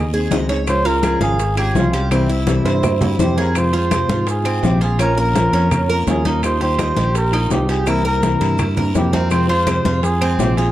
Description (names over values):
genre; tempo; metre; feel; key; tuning
latin, Cuban son and guajira; 167 BPM; 4/4; straight; F minor; A4 = 437 Hz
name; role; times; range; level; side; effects
trumpet with cup mute; melody; 0.0-10.7 s; E4 to C5; -21 LUFS; equal; none
Cuban tres; arpeggios; 0.0-10.7 s; C4 to F5; -24 LUFS; right 3 dB; none
fingered electric bass; bass; 0.0-10.7 s; Ab1 to Ab2; -19 LUFS; equal; none
nylon-string guitar; accompaniment; 0.1-10.7 s; C3 to Ab4; -22 LUFS; left 2 dB; none
bongos; percussion; 0.1-10.7 s; none; -30 LUFS; left 7 dB; none
congas; percussion; 0.1-10.6 s; none; -24 LUFS; left 1 dB; none
maracas; percussion; 0.1-10.7 s; none; -37 LUFS; right 8 dB; none
guiro; percussion; 0.3-10.7 s; none; -36 LUFS; left 4 dB; none
timbales; percussion; 0.3-10.7 s; none; -29 LUFS; right 5 dB; none
claves; percussion; 0.7-10.4 s; none; -34 LUFS; left 4 dB; none
room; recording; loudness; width
moderate plate reverb, RT60 2.4 s; dark, warm production; -14 LUFS; side -14 dB against mid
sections
0.0-3.6 A section; 3.6-10.7 B section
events
drum fill 2.7-3.6, 8.8-9.3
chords
0.0 Ab; 0.7 Db; 2.1 C; 3.6 Fm; 5.0 Bbm; 6.4 Ebadd9; 7.9 C7; 9.3 Fm